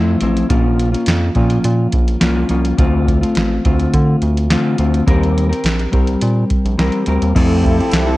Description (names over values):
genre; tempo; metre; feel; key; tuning
indie pop, bedroom pop; 105 BPM; 4/4; straight; F major; A4 = 440 Hz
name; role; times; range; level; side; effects
mellow electric guitar; accompaniment; 0.0-8.2 s; Bb2 to Bb4; -16 LUFS; left 1 dB; wide subtle chorus, vibrato effect
round analog bass; bass; 0.0-8.2 s; A1 to D3; -17 LUFS; equal; none
soft vintage rhythm box; drums; 0.2-8.1 s; crash cymbal, hi-hat, kick drum, ride cymbal, snare drum; -18 LUFS; equal; overdrive
lush unison pad; sustained chords; 7.4-8.2 s; F3 to A4; -20 LUFS; right 1 dB; chorus
room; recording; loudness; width
light reverb; worn, warbling old tape, cassette tape, warbly pitch drift; -13 LUFS; side -18 dB against mid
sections
0.0-7.4 A section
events
none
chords
0.0 Fmaj7; 0.5 Bbm; 2.8 Dm7; 5.1 Eb6; 7.4 Fmaj7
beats
| 0.51 1.08 1.65 2.22 | 2.79 3.36 3.93 4.50 | 5.08 5.65 6.22 6.79 | 7.36 7.93